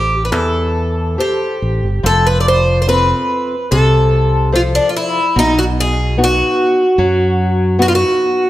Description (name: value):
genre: fado-style ballad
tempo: 73 BPM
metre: 4/4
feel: rubato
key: unclear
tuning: A4 = 439 Hz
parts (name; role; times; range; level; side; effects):
- picked twelve-string acoustic guitar; melody; 0.0-8.5 s; D4 to D5; -14 LUFS; equal; none
- nylon-string guitar; accompaniment; 0.0-8.4 s; B2 to C5; -19 LUFS; left 2 dB; none
- fingered electric bass; bass; 0.0-8.0 s; F1 to F#2; -16 LUFS; equal; none
room: moderate recital hall reverb, RT60 1.8 s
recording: none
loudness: -12 LUFS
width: side -14 dB against mid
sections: 0.0-2.0 A section; 2.0-8.5 B section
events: none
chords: 0.0 Am7; 2.0 F; 5.3 B